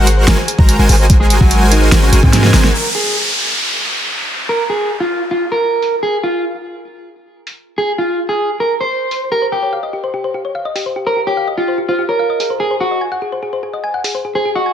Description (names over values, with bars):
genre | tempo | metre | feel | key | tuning
future bass | 146 BPM | 4/4 | half-time | unclear | A4 = 440 Hz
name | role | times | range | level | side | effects
airy dreamy lead | arpeggios | 0.0-2.7 s | Gb5 to Bb5 | -25 LUFS | equal | chorus, sidechain pumping
thumb-piano-like synth pluck | arpeggios | 0.0-2.7, 9.3-14.7 s | G4 to Bb5 | -22 LUFS | left 3 dB | chorus, cassette tape, sidechain pumping, tape echo
supersaw chords | riff | 0.0-2.7 s | Ab3 to Bb5 | -17 LUFS | equal | sidechain pumping, low-pass filter, tape echo
warm 808-style bass | bass | 0.0-2.7 s | Ab1 to Ab2 | -12 LUFS | equal | sidechain pumping
pop drum kit | drums | 0.1-14.1 s | crash cymbal, hi-hat, snare drum | -17 LUFS | equal | overdrive, low-pass filter on hats, low-pass filter on snare, low-pass filter on cymbals, low-pass filter on room
electronic kick drum | drums | 0.6-2.3 s | none | -10 LUFS | equal | overdrive
electric guitar at the edge of break-up | melody | 1.2-14.7 s | C3 to C5 | -16 LUFS | right 1 dB | sidechain pumping, digital delay
downlifter | sound effects | 2.7-6.0 s | none | -18 LUFS | equal | none
room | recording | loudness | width
light reverb | dense, heavily limited modern master | -13 LUFS | side -10 dB against mid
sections
0.0-2.7 A section; 2.7-14.7 B section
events
drop 0.0-2.7; kick drops out 2.3-2.7; drum fill 2.3-2.7; band accent 2.6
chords
0.0 Ab9; 2.7 N.C.; 9.1 Eb13; 12.4 Ab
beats
0.28 0.69 | 1.10 1.51 1.92 2.33 | 2.74 3.15 3.56 3.98 | 4.39 4.80 5.21 5.62 | 6.03 6.44 6.85 7.26 | 7.67 8.09 8.50 8.91 | 9.32 9.73 10.14 10.55 | 10.96 11.37 11.78 12.20 | 12.61 13.02 13.43 13.84 | 14.25 14.66